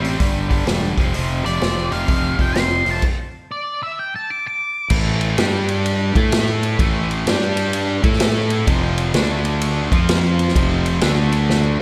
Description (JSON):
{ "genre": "blues rock power trio and southern rock", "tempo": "128 BPM", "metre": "4/4", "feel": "swing 65% on 8ths", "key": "unclear", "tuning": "A4 = 438 Hz", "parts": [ { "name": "cranked stack guitar", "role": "riff", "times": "0.0-11.8 s", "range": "F2 to A4", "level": "-24 LUFS", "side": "equal", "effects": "overdrive, slapback echo" }, { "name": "fuzz fingered electric bass", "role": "bass", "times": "0.0-11.8 s", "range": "E1 to A2", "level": "-23 LUFS", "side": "equal", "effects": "overdrive" }, { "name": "vintage drum kit", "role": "drums", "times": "0.0-11.6 s", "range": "crash cymbal, hi-hat, kick drum, ride cymbal, snare drum", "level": "-23 LUFS", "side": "equal", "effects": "none" }, { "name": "octave-fuzz lead guitar", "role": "melody", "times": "1.5-4.9 s", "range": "D5 to D6", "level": "-26 LUFS", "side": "equal", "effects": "distortion, slapback echo" } ], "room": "moderate recital hall reverb, RT60 1.3 s, small room ambience", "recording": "big arena sound", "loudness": "-19 LUFS", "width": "mono", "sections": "0.0-4.9 A section; 4.9-11.8 B section", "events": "stop 3.0-4.9; drum fill 11.5-11.8", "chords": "0.2 G5; 0.9 F5; 3.0 N.C.; 4.9 A5; 5.4 G5; 6.1 A5; 7.3 G5; 8.0 A5; 8.7 F5; 9.1 D5; 9.8 F5; 11.0 D5" }